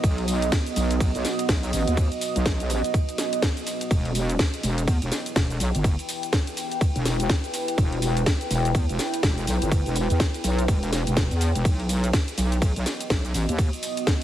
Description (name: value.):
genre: bass house.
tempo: 124 BPM.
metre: 4/4.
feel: swing 60% on 16ths.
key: E harmonic minor.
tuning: A4 = 439 Hz.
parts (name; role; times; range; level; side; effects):
deep dark ambient pad; sustained chords; 0.0-14.2 s; B3 to G5; -29 LUFS; right 2 dB; chorus, built-in reverb, sidechain pumping.
wobble bass; bass; 0.0-13.7 s; E1 to E2; -24 LUFS; equal; chorus, overdrive, sidechain pumping.
electronic kick drum; drums; 0.0-14.2 s; none; -22 LUFS; equal; small room ambience.
garage drum kit; drums; 0.0-14.2 s; cabasa, hi-hat, ride cymbal, snare drum; -29 LUFS; equal; small room ambience.
room: digital ambience.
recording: heavily compressed radio sound.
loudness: -21 LUFS.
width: side -12 dB against mid.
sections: 0.0-14.2 A section.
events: none.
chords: 0.0 B; 3.9 Em; 11.7 B.